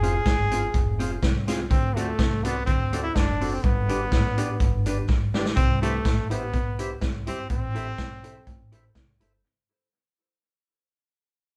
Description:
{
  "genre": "ska",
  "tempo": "124 BPM",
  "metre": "4/4",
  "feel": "swing 53% on 8ths",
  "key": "C major",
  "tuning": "A4 = 439 Hz",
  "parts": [
    { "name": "brilliant trombone", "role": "melody", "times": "0.0-8.9 s", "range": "A3 to Ab4", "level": "-32 LUFS", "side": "equal", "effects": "none" },
    { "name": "vintage hollow-body jazz guitar", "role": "accompaniment", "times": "0.0-9.4 s", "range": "C4 to C5", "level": "-36 LUFS", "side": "equal", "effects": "dub echo" },
    { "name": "tonewheel organ", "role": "stabs", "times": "0.0-9.3 s", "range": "D4 to F5", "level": "-39 LUFS", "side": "equal", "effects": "slow rotary speaker" },
    { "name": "upright bass", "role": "bass", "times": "0.0-9.4 s", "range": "F1 to D2", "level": "-33 LUFS", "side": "equal", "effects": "none" },
    { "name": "vintage drum kit", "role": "drums", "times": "0.0-9.3 s", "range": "hi-hat, kick drum, snare drum", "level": "-27 LUFS", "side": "equal", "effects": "none" },
    { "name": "clean electric guitar", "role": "riff", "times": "0.3-9.3 s", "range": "F2 to D3", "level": "-39 LUFS", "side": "equal", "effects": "none" }
  ],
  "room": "moderate studio reverb, RT60 0.9 s",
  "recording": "band playing live in one room",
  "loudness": "-25 LUFS",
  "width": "mono",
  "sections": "0.0-5.6 A section; 5.6-9.4 B section",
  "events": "drum fill 5.1-5.6; fade-out 5.6-9.4",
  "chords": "0.0 Fm; 1.7 D7; 3.6 G; 5.6 C",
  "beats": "0.26 0.74 1.23 | 1.71 2.19 2.67 3.15 | 3.64 4.12 4.60 5.09 | 5.57 6.05 6.54 7.02 | 7.50 7.99 8.47 8.95"
}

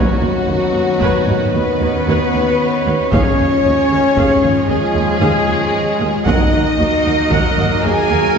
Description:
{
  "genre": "cinematic, epic orchestral film score",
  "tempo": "76 BPM (dotted quarters)",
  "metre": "12/8",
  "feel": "straight",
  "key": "unclear",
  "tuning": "A4 = 438 Hz",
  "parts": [
    { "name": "rich symphonic violin section", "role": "melody", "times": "0.0-8.4 s", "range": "F#4 to Ab5", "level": "-24 LUFS", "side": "left 4 dB", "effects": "none" },
    { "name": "bright large flute ensemble", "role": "second line", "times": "0.0-8.4 s", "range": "F#4 to Ab5", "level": "-24 LUFS", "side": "left 1 dB", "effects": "none" },
    { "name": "warm symphonic violin section", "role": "second line", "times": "0.0-8.4 s", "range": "F#4 to Ab5", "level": "-25 LUFS", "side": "left 1 dB", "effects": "none" },
    { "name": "warm studio viola section", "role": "accompaniment", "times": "0.0-8.2 s", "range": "F4 to Gb5", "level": "-25 LUFS", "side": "right 1 dB", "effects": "none" },
    { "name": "bright trombone section", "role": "sustained chords", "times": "0.0-8.4 s", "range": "D#3 to B3", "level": "-24 LUFS", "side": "equal", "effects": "none" },
    { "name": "clear symphonic string section", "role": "sustained chords", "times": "0.0-8.4 s", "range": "Bb3 to D#5", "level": "-26 LUFS", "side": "right 1 dB", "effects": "none" },
    { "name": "dark French horn section", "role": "sustained chords", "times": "0.0-8.4 s", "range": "F#3 to Ab4", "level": "-18 LUFS", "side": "left 1 dB", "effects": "none" },
    { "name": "warm trumpet", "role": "stabs", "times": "0.0-8.4 s", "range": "Bb4 to C#5", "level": "-26 LUFS", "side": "right 2 dB", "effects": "none" },
    { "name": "dark symphonic cello section", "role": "bass", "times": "0.0-8.2 s", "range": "D#2", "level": "-23 LUFS", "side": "right 2 dB", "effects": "none" },
    { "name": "rich symphonic double bass section", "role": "bass", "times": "0.0-8.4 s", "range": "D#2", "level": "-23 LUFS", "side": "right 2 dB", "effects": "none" },
    { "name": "taiko ensemble", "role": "drums", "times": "1.0-7.8 s", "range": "none", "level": "-20 LUFS", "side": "equal", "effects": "none" }
  ],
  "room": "wet concert hall reverb, RT60 2.2 s",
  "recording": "heard from further back in the room, nothing above 8.0 kHz",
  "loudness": "-13 LUFS",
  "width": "side -6 dB against mid",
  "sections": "0.0-8.4 A section",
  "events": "none",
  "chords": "0.0 Badd9/D#; 3.1 Dbadd9/Eb; 6.3 Ebm",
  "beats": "0.74 1.54 2.33 | 3.12 3.90 4.69 5.47 | 6.27 7.05 7.84"
}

